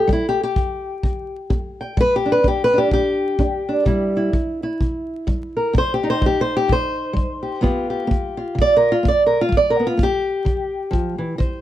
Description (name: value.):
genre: acoustic country blues, solo or duo.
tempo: 127 BPM.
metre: 4/4.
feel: swing 60% on 8ths.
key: G mixolydian.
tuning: A4 = 439 Hz.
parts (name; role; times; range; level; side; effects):
fingerpicked old ladder-braced acoustic guitar; melody; 0.0-11.6 s; C3 to G5; -18 LUFS; equal; none.
kick drum; drums; 0.1-11.5 s; none; -22 LUFS; equal; none.
room: little or no reverb.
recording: vinyl crackle.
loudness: -17 LUFS.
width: side -13 dB against mid.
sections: 0.0-11.6 A section.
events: steel-string acoustic guitar solo 0.0-11.6.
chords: 0.0 G5; 3.9 C; 5.7 Cm; 7.6 G7.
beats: | 0.07 0.55 1.02 1.49 | 1.97 2.44 2.91 3.38 | 3.86 4.33 4.80 5.28 | 5.75 6.22 6.69 7.16 | 7.63 8.11 8.58 9.05 | 9.52 9.99 10.46 10.93 | 11.41.